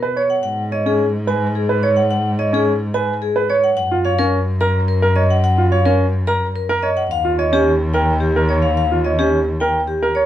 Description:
classical, minimalist pattern music; 108 BPM; 3/4; straight; F# major; A4 = 444 Hz
vibraphone with hard mallets; melody; 0.0-10.3 s; G4 to A#5; -19 LUFS; left 1 dB
clear grand piano; arpeggios; 0.0-10.3 s; C#4 to C#5; -19 LUFS; right 3 dB
rich cello; bass; 0.0-10.3 s; D#2 to B2; -19 LUFS; equal
light reverb; dark, warm production; -15 LUFS; side -12 dB against mid
0.0-10.3 A section
0.4 G#m; 3.8 F#; 7.1 D#7

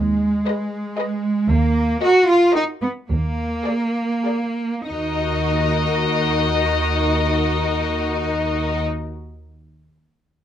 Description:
quick classical-period movement for string orchestra; 92-120 BPM; 3/4; rubato; Eb minor; A4 = 440 Hz
rich studio cello section; bass; 0.0-8.8 s; Ab3 to Gb4; -20 LUFS; right 1 dB
rich studio double bass section; bass; 0.0-8.8 s; Eb2; -22 LUFS; right 1 dB
rich chamber violin section; melody; 0.5-8.8 s; D5 to Eb5; -26 LUFS; left 7 dB
rich studio violin section; second line; 0.5-8.8 s; Bb4 to Cb5; -29 LUFS; left 4 dB
rich studio viola section; accompaniment; 0.5-8.8 s; Gb4 to Ab4; -30 LUFS; right 1 dB
little or no reverb; close, detailed microphones; -18 LUFS; side -10 dB against mid
0.0-4.9 A section; 4.9-8.6 B section
slowing down 0.7-4.9
0.0 Abm/Eb; 1.5 Ebm; 3.1 Bb7/Eb; 4.9 Ebm

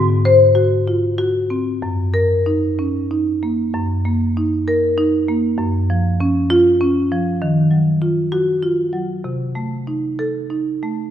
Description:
classical, contemporary piece for solo marimba; 64 BPM (dotted quarters); 6/8; rubato; Gb lydian; A4 = 440 Hz
marimba with medium hard mallets; solo; 0.0-11.1 s; Gb2 to C5; -15 LUFS; equal
wet scoring stage reverb, RT60 1.8 s; recorded in a church or concert hall; -15 LUFS; side -10 dB against mid
0.0-3.7 A section; 3.7-11.1 B section
0.0 Ab7; 1.8 Gb6; 5.6 Db/Gb; 7.4 Ebmadd9; 9.2 Cm6

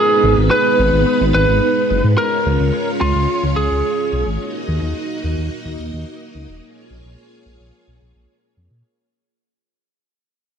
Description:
synthwave; 108 BPM; 4/4; straight; A4 = 444 Hz
lightly driven lead guitar; melody; 0.0-4.3 s; E#4 to B4; -17 LUFS; right 1 dB; digital delay
string machine, full ensemble; sustained chords; 0.0-8.8 s; G#3 to D#5; -21 LUFS; equal; ensemble chorus
dark detuned saw bass; bass; 0.2-8.8 s; D#1 to A#2; -18 LUFS; equal
moderate lush hall reverb, RT60 2.7 s; -14 LUFS; side -7 dB against mid
0.0-8.8 A section
fade-out 0.0-8.8
0.0 G#m; 2.2 C#; 4.4 D#m; 6.6 A#m7

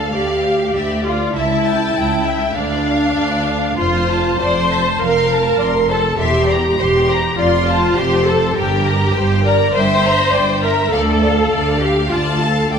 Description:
quick classical-period movement for string orchestra; 101 BPM; 4/4; rubato; D minor; A4 = 439 Hz
rich symphonic violin section; melody; 0.0-12.8 s; D5 to C6; -23 LUFS; left 3 dB
warm symphonic violin section; second line; 0.0-12.8 s; Bb4 to A5; -22 LUFS; left 3 dB
rich symphonic viola section; accompaniment; 0.0-12.7 s; D4 to C5; -17 LUFS; equal
warm symphonic cello section; bass; 0.0-12.8 s; C#2 to G2; -23 LUFS; right 2 dB
warm symphonic double bass section; bass; 0.0-12.8 s; E1 to D2; -21 LUFS; right 2 dB
wet scoring stage reverb, RT60 2.0 s; minimal, uncompressed stereo recording; -13 LUFS; side -6 dB against mid
0.0-12.8 A section
0.0 Dm; 1.4 A7/C#; 2.6 Dm; 3.8 F; 6.2 C7/E; 7.4 F; 8.6 Gm; 10.9 Dm

